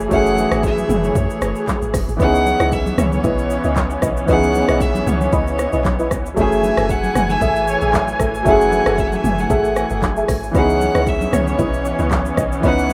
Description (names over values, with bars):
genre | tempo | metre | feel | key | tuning
amapiano | 115 BPM | 4/4 | swing 55% on 16ths | C# minor | A4 = 442 Hz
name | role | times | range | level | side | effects
clear concert grand piano | accompaniment | 0.0-12.9 s | E3 to B4 | -24 LUFS | equal | none
dark studio string section | sustained chords | 0.0-12.9 s | E3 to G#5 | -24 LUFS | equal | sidechain pumping
deep log drum bass | bass | 0.0-12.9 s | F#1 to F#2 | -26 LUFS | equal | none
deep house drum kit | drums | 0.0-12.9 s | handclaps, hi-hat, kick drum, rim click, shaker, toms | -24 LUFS | equal | none
bright fiddle | melody | 0.1-12.9 s | C#5 to F#5 | -27 LUFS | equal | tape echo
congas | percussion | 0.4-12.9 s | none | -30 LUFS | equal | none
deep mellow chord stab | stabs | 2.2-12.7 s | E4 to E5 | -25 LUFS | equal | chorus, tape echo
room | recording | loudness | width
moderate studio ambience, RT60 0.5 s | rough home demo mix | -17 LUFS | mono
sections
0.0-12.9 A section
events
none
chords
0.0 F#m9; 2.2 C#m9; 6.4 F#m9; 10.5 C#m9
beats
| 0.11 0.63 1.16 1.68 | 2.20 2.72 3.24 3.76 | 4.29 4.81 5.33 5.85 | 6.37 6.89 7.42 7.94 | 8.46 8.98 9.50 10.02 | 10.55 11.07 11.59 12.11 | 12.63